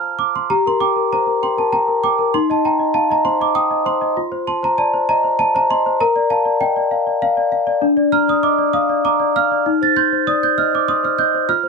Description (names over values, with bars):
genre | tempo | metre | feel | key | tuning
classical, lullaby for celesta | 98 BPM | 3/4 | straight | Bb major | A4 = 440 Hz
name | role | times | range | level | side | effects
large celesta | solo | 0.0-11.7 s | D4 to A6 | -14 LUFS | equal | none
room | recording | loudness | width
light reverb | nothing above 10.3 kHz | -14 LUFS | side -4 dB against mid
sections
0.5-11.7 A section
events
none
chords
0.5 Gm; 2.3 Cm/Eb; 4.2 F7; 6.0 Bb; 7.8 Bb/D; 9.6 Cm/Eb